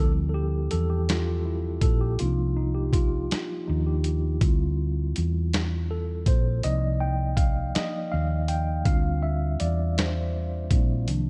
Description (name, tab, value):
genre	slow six-eight R&B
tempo	54 BPM (dotted quarters)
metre	6/8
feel	straight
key	unclear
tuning	A4 = 440 Hz
part	mellow tine electric piano	accompaniment	0.0-11.3 s	Eb3 to G5	-32 LUFS	equal	none
part	hollow-body short-scale fingered electric bass	bass	0.0-11.3 s	Bb1 to E2	-28 LUFS	equal	none
part	dusty soul sampler-style drum kit	drums	0.7-11.2 s	hi-hat, kick drum, snare drum	-27 LUFS	equal	none
room	digital ambience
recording	worn, warbling old tape, cassette tape, warbly pitch drift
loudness	-26 LUFS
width	mono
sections	0.0-11.3 A section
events	tine electric piano solo 0.0-11.3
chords	0.0 Dm11; 2.2 Cm11; 4.4 Dm11; 6.6 Cm11; 8.9 Dm11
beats	1.08 | 2.19 3.30 | 4.41 5.52 | 6.63 7.75 | 8.86 9.97 | 11.08